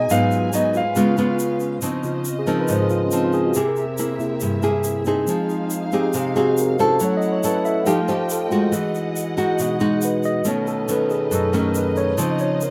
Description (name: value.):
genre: bossa nova.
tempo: 139 BPM.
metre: 4/4.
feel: straight.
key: unclear.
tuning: A4 = 440 Hz.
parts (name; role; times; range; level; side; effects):
warm grand piano; melody; 0.0-1.6 s; D#5 to E#5; -24 LUFS; equal; none.
breathy mellow flute section; second line; 0.0-1.6 s; D#4 to E#4; -35 LUFS; equal; none.
nylon-string guitar; accompaniment; 0.0-12.7 s; Gb2 to A4; -23 LUFS; equal; none.
tine electric piano; accompaniment; 0.0-12.7 s; Cb3 to F5; -26 LUFS; equal; none.
dark studio string section; sustained chords; 0.0-12.7 s; F#3 to G#5; -32 LUFS; equal; none.
tube shaker; percussion; 0.1-12.7 s; none; -35 LUFS; equal; none.
room: moderate small room reverb, RT60 0.5 s.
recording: rough home demo mix.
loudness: -21 LUFS.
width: mono.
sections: 0.0-1.8 A section; 1.8-12.7 B section.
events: tine electric piano solo 1.8-12.7.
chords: 0.1 G#m7; 1.0 C#7; 1.8 Dbmaj9; 3.5 C7b13; 5.3 Fm7; 7.0 Gbm7; 7.9 F9; 8.7 Emaj9; 10.4 Cb9; 12.2 Dbmaj9.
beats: | 0.10 0.53 0.96 1.39 | 1.82 2.25 2.69 3.12 | 3.55 3.98 4.41 4.84 | 5.27 5.71 6.14 6.57 | 7.00 7.43 7.86 8.29 | 8.72 9.16 9.59 10.02 | 10.45 10.88 11.31 11.74 | 12.17 12.60.